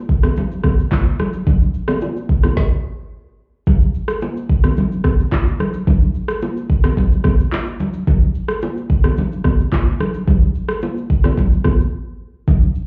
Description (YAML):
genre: afrobeats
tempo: 109 BPM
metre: 4/4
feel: straight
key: none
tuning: none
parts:
  - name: afro-pop drum kit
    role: drums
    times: 0.1-12.9 s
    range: handclaps, kick drum, rim click, shaker, snare drum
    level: -18 LUFS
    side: equal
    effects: none
  - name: bongos and congas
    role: percussion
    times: 0.2-12.6 s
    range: none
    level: -23 LUFS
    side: equal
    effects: none
room: light reverb, digital ambience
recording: heard muffled through a wall, club reverb, EQ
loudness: -17 LUFS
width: mono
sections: 0.0-3.7 A section; 3.7-12.9 B section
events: stop 2.6-3.7; break 11.9-12.5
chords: none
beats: 0.37 0.92 | 1.47 2.02 2.57 3.12 | 3.67 4.22 4.77 5.32 | 5.87 6.42 6.97 7.52 | 8.07 8.62 9.17 9.72 | 10.28 10.83 11.38 11.93 | 12.48